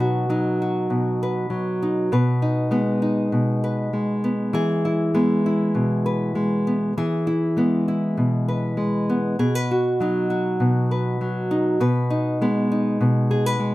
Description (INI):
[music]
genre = folk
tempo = 99 BPM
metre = 4/4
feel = straight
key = B major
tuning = A4 = 440 Hz
[part]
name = nylon-string guitar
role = solo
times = 0.0-13.7 s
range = B2 to B4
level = -19 LUFS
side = equal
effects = none
[sound]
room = light reverb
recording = none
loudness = -19 LUFS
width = side -17 dB against mid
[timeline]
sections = 0.0-13.7 A section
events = none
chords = 0.0 B; 2.1 G#m/B; 4.5 E; 9.4 B; 11.8 G#m/B